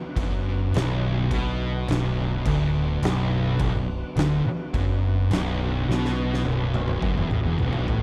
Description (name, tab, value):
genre	stoner and doom metal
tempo	105 BPM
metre	4/4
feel	straight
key	B minor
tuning	A4 = 441 Hz
part	tonewheel organ	sustained chords	0.0-8.0 s	D3 to B3	-38 LUFS	equal	slow rotary speaker, chorus vibrato
part	thick fuzz guitar	riff	0.2-8.0 s	B1 to B2	-29 LUFS	equal	distortion
part	thick fuzz guitar	riff	0.2-8.0 s	B1 to B2	-30 LUFS	equal	distortion
part	modern bright fingered electric bass	bass	0.2-8.0 s	B0 to B1	-31 LUFS	equal	overdrive
part	oversized low-tuned drum kit	drums	0.2-8.0 s	crash cymbal, kick drum, snare drum, toms	-31 LUFS	equal	none
room	little or no reverb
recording	none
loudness	-24 LUFS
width	mono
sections	0.0-8.0 A section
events	drum fill 5.9-8.0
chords	0.0 Bm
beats	0.16 0.73 | 1.31 1.88 2.45 3.03 | 3.60 4.17 4.74 5.31 | 5.88 6.45 7.02 7.59